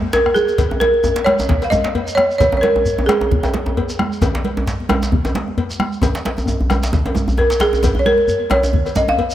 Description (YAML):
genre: west african traditional, West African drum ensemble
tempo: 132 BPM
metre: 4/4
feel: swing 56% on 16ths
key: Db major pentatonic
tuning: A4 = 440 Hz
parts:
  - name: djembe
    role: percussion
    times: 0.0-9.3 s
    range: none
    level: -25 LUFS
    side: left 3 dB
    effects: none
  - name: balafon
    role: melody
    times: 0.1-3.9, 7.4-9.3 s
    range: Ab4 to F5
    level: -16 LUFS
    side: right 1 dB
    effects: tape echo
  - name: cowbell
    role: percussion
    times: 0.1-9.3 s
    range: none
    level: -28 LUFS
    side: left 6 dB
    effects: none
  - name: djembe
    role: percussion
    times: 0.1-9.2 s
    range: none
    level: -21 LUFS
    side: equal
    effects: none
  - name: shekere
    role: percussion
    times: 0.1-9.3 s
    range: none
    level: -29 LUFS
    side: equal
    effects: none
  - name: bombo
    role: percussion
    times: 0.3-8.9 s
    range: none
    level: -22 LUFS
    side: left 1 dB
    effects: none
  - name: congas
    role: percussion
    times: 0.4-9.1 s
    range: none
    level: -24 LUFS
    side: right 5 dB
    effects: none
room: moderate plate reverb, RT60 3.4 s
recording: dreamy mix soaked in reverb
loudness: -14 LUFS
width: side -12 dB against mid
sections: 0.6-9.3 A section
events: drum fill 0.0-0.6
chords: none